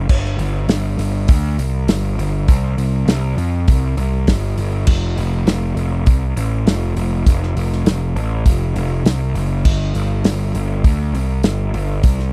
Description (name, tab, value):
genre	classic rock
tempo	100 BPM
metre	4/4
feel	straight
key	unclear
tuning	A4 = 440 Hz
part	fuzz picked electric bass	bass	0.0-12.3 s	F1 to F2	-20 LUFS	equal	overdrive
part	damped 70s drum kit	drums	0.1-12.3 s	crash cymbal, hi-hat, kick drum, snare drum	-17 LUFS	equal	none
room	little or no reverb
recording	dry, close 1970s-style studio recording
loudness	-18 LUFS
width	mono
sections	0.0-12.3 A section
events	none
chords	none